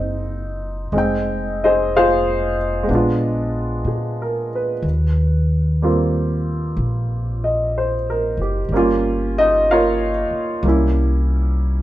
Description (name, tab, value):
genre	jazz ballad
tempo	62 BPM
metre	4/4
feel	swing 67% on 8ths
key	unclear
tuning	A4 = 438 Hz
part	clear concert grand piano	accompaniment	0.0-11.8 s	G3 to G5	-19 LUFS	equal	none
part	upright bass	bass	0.0-11.8 s	F1 to Bb2	-21 LUFS	equal	none
room	moderate studio reverb, RT60 0.8 s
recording	band playing live in one room, nothing above 11.0 kHz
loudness	-17 LUFS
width	side -14 dB against mid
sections	0.0-11.8 A section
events	none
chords	0.0 Dbmaj9 (rootless); 0.9 Fm7; 2.9 Bb7b9; 4.8 Eb69; 8.7 Gm7b5; 10.6 C7b9